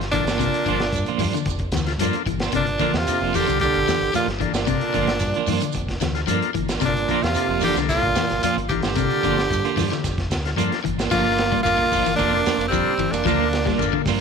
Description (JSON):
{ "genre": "afrobeat", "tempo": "112 BPM", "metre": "4/4", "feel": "straight", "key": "G dorian", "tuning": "A4 = 440 Hz", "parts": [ { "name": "clean electric guitar", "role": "stabs", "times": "0.0-14.2 s", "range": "F3 to F4", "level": "-28 LUFS", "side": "right 12 dB", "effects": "tremolo" }, { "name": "deep dub fingered electric bass", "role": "bass", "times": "0.0-14.2 s", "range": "F1 to G2", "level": "-28 LUFS", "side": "equal", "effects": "none" }, { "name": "crunchy breakbeat drum kit", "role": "drums", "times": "0.0-14.2 s", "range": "crash cymbal, hi-hat, kick drum, ride cymbal, snare drum", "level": "-28 LUFS", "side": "equal", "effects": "none" }, { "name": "raspy tenor saxophone", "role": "melody", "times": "0.1-13.9 s", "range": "C4 to G4", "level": "-23 LUFS", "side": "left 1 dB", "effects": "none" }, { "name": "clear trombone", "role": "second line", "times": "0.1-13.9 s", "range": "Bb2 to Bb3", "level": "-27 LUFS", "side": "right 12 dB", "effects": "none" }, { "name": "combo organ", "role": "accompaniment", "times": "0.1-14.0 s", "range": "Bb3 to Bb4", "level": "-28 LUFS", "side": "left 14 dB", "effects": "none" }, { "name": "electric guitar at the edge of break-up", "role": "arpeggios", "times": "0.1-14.1 s", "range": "C3 to G3", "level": "-28 LUFS", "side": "left 12 dB", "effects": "wide subtle chorus" }, { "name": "shekere", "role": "percussion", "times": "0.1-14.2 s", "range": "none", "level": "-33 LUFS", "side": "right 5 dB", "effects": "none" }, { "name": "warm trombone section", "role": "second line", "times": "13.8-14.2 s", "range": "Bb3", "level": "-30 LUFS", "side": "left 8 dB", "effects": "slapback echo" } ], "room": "moderate echo chamber reverb, RT60 1.9 s, small room ambience", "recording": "1960s-style stereo with parts hard left and right", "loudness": "-19 LUFS", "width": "side -6 dB against mid", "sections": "0.0-11.1 A section; 11.1-14.2 B section", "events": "none", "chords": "0.0 Gm7", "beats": "| 0.40 0.94 1.47 2.00 | 2.54 3.08 3.61 4.14 | 4.68 5.22 5.75 6.29 | 6.82 7.36 7.89 8.43 | 8.97 9.50 10.04 10.58 | 11.11 11.65 12.19 12.72 | 13.26 13.80" }